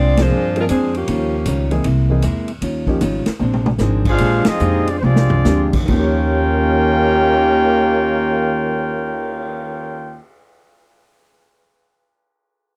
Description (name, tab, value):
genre	jazz, big band swing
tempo	133-156 BPM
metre	4/4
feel	swing 66% on 8ths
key	Eb mixolydian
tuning	A4 = 438 Hz
part	warm saxophone section	melody	0.0-1.7 s	F3 to D5	-23 LUFS	equal	none
part	picked acoustic archtop guitar	accompaniment	0.0-10.3 s	Bb2 to G4	-27 LUFS	equal	none
part	upright bass	bass	0.0-10.2 s	Ab1 to G2	-21 LUFS	equal	none
part	warm baby grand piano	accompaniment	0.2-10.4 s	Eb2 to Db5	-26 LUFS	equal	none
part	swinging big-band drum kit	drums	0.2-9.4 s	crash cymbal, cymbal swell, hi-hat, kick drum, ride cymbal, snare drum, toms	-25 LUFS	equal	none
part	warm trumpet section	melody	4.1-10.2 s	C4 to G5	-22 LUFS	equal	none
part	warm trombone section	second line	4.1-10.2 s	Eb3 to G4	-21 LUFS	equal	none
room	little or no reverb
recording	dry, close 1970s-style studio recording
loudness	-17 LUFS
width	mono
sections	0.0-4.2 A section; 4.2-5.9 B section; 5.9-9.5 C section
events	band accent 0.1, 4.4; slowing down 2.6-5.9; drum fill 3.4-3.8, 5.0-5.5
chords	0.0 Bb9; 1.1 Eb9; 1.9 C7alt; 2.6 Eb9; 3.4 Bb9; 4.2 Bb13; 5.9 Eb9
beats	0.31 0.70 | 1.08 1.47 1.85 2.24 | 2.62 3.01 3.40 3.79 | 4.19 4.60 5.02 5.45 | 5.89 6.35 6.80 7.25 | 7.70 8.15 8.61 9.06